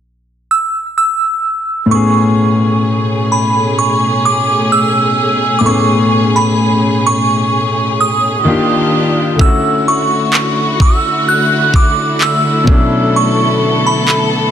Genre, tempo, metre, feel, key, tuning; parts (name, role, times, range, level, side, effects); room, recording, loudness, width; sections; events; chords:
contemporary R&B; 64 BPM; 4/4; straight; A major; A4 = 440 Hz
glassy synth bell; melody; 0.5-14.5 s; B5 to F#6; -14 LUFS; right 2 dB; chorus, ping-pong delay
clear concert grand piano; accompaniment; 1.9-14.5 s; A2 to G#4; -15 LUFS; left 2 dB
warm studio string section; sustained chords; 1.9-14.5 s; B2 to A4; -16 LUFS; equal; sidechain pumping
trap drum kit; drums; 9.4-14.3 s; handclaps, kick drum; -12 LUFS; equal
light reverb, small room ambience; faint mains hum; -10 LUFS; side -9 dB against mid
0.0-1.9 A section; 1.9-14.5 B section
kick muted 13.1-14.5
0.0 N.C.; 1.9 Amaj9; 8.5 D#maj9; 9.4 Dmaj9; 12.7 Bm11